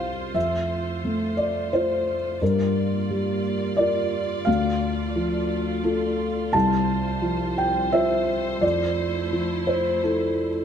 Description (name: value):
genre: neoclassical piano and strings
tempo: 87 BPM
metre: 3/4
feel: rubato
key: unclear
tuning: A4 = 440 Hz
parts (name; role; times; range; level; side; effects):
- felt-muted upright piano; accompaniment; 0.0-10.6 s; C2 to A5; -22 LUFS; equal; none
- muted studio string section; sustained chords; 0.0-10.6 s; G3 to D5; -32 LUFS; right 1 dB; none
room: light reverb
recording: close, detailed microphones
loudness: -21 LUFS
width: side -8 dB against mid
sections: 0.0-10.6 A section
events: none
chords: 0.3 Fmaj7; 2.4 Gm7; 4.5 Dm; 6.5 Csus4; 8.6 Fmaj7